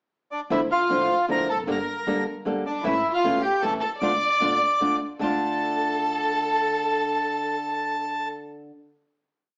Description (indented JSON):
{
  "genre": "tango",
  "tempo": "154 BPM",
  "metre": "3/4",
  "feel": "rubato",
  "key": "D minor",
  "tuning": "A4 = 440 Hz",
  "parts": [
    { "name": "bandoneon", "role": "melody", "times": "0.3-8.3 s", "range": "D4 to D6", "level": "-26 LUFS", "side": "equal", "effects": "none" },
    { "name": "rich studio violin section", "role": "second line", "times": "0.5-8.3 s", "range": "D4 to D5", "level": "-32 LUFS", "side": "equal", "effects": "none" },
    { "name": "flamenco guitar", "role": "accompaniment", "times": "0.5-8.7 s", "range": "D3 to A4", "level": "-30 LUFS", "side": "equal", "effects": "none" },
    { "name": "upright bass", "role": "bass", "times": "0.5-5.4 s", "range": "E1 to D2", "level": "-42 LUFS", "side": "equal", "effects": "none" }
  ],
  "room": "wet studio reverb, RT60 0.8 s",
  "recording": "heard from further back in the room, small speaker sound",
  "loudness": "-24 LUFS",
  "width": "mono",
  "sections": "0.0-0.5 pickup bar; 0.5-5.2 A section; 5.2-7.5 final chord",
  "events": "none",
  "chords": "0.0 N.C.; 0.5 Dmadd9; 1.7 Gmadd9; 2.8 A; 4.0 Dm",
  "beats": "0.12 | 0.51 0.90 1.29 | 1.68 2.07 2.46 | 2.85 3.24 3.62 | 4.01 4.41 4.80 | 5.19 5.58 5.97 | 6.35 6.74 7.13"
}